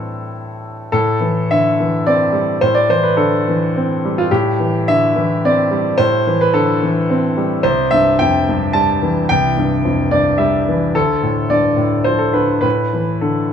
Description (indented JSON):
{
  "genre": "neoclassical minimalist piano",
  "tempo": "108 BPM",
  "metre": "3/4",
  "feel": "uneven beats, rubato",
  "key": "A minor",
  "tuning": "A4 = 441 Hz",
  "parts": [
    { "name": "bright grand piano", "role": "solo", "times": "0.0-13.5 s", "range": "C2 to A5", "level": "-13 LUFS", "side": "equal", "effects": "none" }
  ],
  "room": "light reverb",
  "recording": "small room ambience",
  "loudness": "-13 LUFS",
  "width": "side -8 dB against mid",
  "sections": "0.9-13.5 A section",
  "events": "none",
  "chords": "0.0 Am7; 7.6 C; 10.9 Dm; 12.6 A5"
}